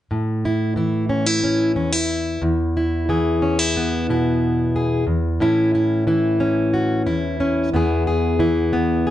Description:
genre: folk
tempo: 91 BPM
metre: 4/4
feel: straight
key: A major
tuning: A4 = 440 Hz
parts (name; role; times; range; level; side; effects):
- fingerpicked plugged-in steel-string acoustic guitar; solo; 0.1-9.1 s; E2 to G#4; -17 LUFS; equal; none
room: moderate large studio reverb, RT60 0.9 s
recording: nothing above 10.5 kHz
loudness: -17 LUFS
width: side -13 dB against mid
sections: 0.1-5.4 A section; 5.4-9.1 B section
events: none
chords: 0.1 A; 2.4 E; 5.4 A; 7.7 E

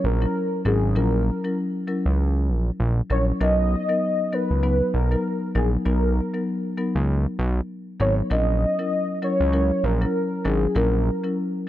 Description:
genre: afrobeats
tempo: 98 BPM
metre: 4/4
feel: swing 58% on 16ths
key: B major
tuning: A4 = 439 Hz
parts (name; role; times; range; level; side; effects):
- warm velvety synth lead; melody; 0.0-11.4 s; G#4 to D#5; -26 LUFS; equal; chorus
- marimba with soft mallets; accompaniment; 0.0-11.6 s; F#3 to B4; -25 LUFS; left 2 dB; none
- fat analog bass; bass; 0.0-11.1 s; G#1 to C#2; -21 LUFS; right 1 dB; none
room: light reverb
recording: none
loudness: -20 LUFS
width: side -13 dB against mid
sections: 0.0-11.7 A section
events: none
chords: 0.0 F#7; 3.4 Bmaj7; 8.3 F#7

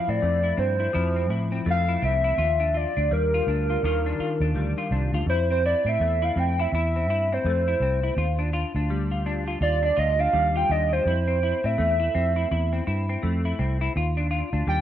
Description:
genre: indie pop, bedroom pop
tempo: 83 BPM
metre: 4/4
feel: swing 60% on 16ths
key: F major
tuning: A4 = 439 Hz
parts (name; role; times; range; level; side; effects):
- warbly nostalgic lead; melody; 0.0-14.8 s; Bb4 to G5; -24 LUFS; right 1 dB; lush chorus, slapback echo
- semi-hollow electric guitar; accompaniment; 0.0-14.8 s; Eb3 to F4; -29 LUFS; left 3 dB; analog chorus, vibrato effect
- vintage muted fingered electric bass; bass; 0.1-14.8 s; C2 to A2; -25 LUFS; equal; none
room: light reverb, digital ambience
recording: none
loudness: -22 LUFS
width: side -11 dB against mid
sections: 0.0-14.8 A section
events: soft synth lead solo 0.0-14.8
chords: 0.0 Fmaj7; 2.4 Ebmaj9; 5.3 Fmaj7; 8.2 Ebmaj9; 11.1 Fmaj7; 13.9 Ebmaj9

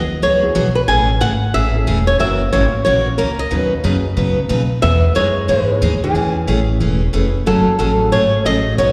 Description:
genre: country, western swing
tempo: 182 BPM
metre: 4/4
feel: swing 63% on 8ths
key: unclear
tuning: A4 = 440 Hz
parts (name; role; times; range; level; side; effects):
- flamenco guitar; melody; 0.0-8.9 s; G#4 to G#5; -19 LUFS; equal; slapback echo
- upright bass; bass; 0.0-8.9 s; E1 to C#3; -20 LUFS; equal; none
- picked steel-string acoustic guitar; accompaniment; 0.2-8.9 s; B2 to B4; -23 LUFS; equal; slapback echo
- warm upright piano; accompaniment; 0.4-8.6 s; G#3 to C#5; -29 LUFS; equal; slapback echo
- hollow-body jazz guitar; second line; 4.8-8.9 s; E3 to B3; -24 LUFS; equal; slapback echo
room: moderate lush hall reverb, RT60 2.5 s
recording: live gig heard through the venue's PA, recital hall reverb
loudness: -16 LUFS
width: mono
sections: 0.0-8.9 A section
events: none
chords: 0.0 Eadd9; 0.9 Amaj7; 2.2 F#7; 3.5 Badd9; 4.8 Emaj7; 6.1 Amaj7; 7.5 F#madd9

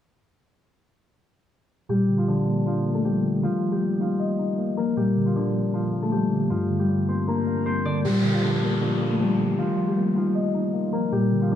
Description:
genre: hip hop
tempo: 156 BPM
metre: 4/4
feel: half-time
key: Bb major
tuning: A4 = 440 Hz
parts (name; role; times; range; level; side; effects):
- Celtic harp; melody; 1.9-11.6 s; D3 to D5; -23 LUFS; left 2 dB; low-pass filter, digital delay
- mellow tine electric piano; accompaniment; 1.9-11.6 s; G2 to Eb5; -26 LUFS; equal; medium stereo tremolo, low-pass filter
- downlifter; sound effects; 8.0-11.1 s; none; -33 LUFS; equal; none
room: light reverb, studio ambience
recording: low-pass filter, small room ambience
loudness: -21 LUFS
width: side -10 dB against mid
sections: 1.9-8.0 A section; 8.0-11.6 B section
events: filter sweep 1.9-8.0, 8.0-11.6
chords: 1.9 Bb; 3.4 Ebsus2; 5.0 Bb; 6.5 Gm; 8.0 Bb; 9.6 Ebsus2

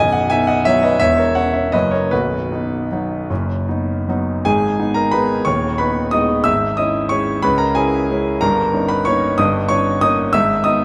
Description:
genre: classical, piano waltz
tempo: 150-198 BPM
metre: 3/4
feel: rubato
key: B major, G# minor from 4.5 s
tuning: A4 = 439 Hz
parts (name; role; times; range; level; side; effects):
- warm concert grand piano; solo; 0.0-10.8 s; B0 to E6; -17 LUFS; equal; none
room: moderate concert hall reverb, RT60 1.9 s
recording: none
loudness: -17 LUFS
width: mono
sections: 0.0-4.5 A section; 4.5-10.8 B section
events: none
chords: 0.0 B; 1.0 C#m/E; 1.7 F#; 2.1 B; 4.5 G#m; 6.5 C#m/G#; 8.4 D#7/G; 10.3 G#m

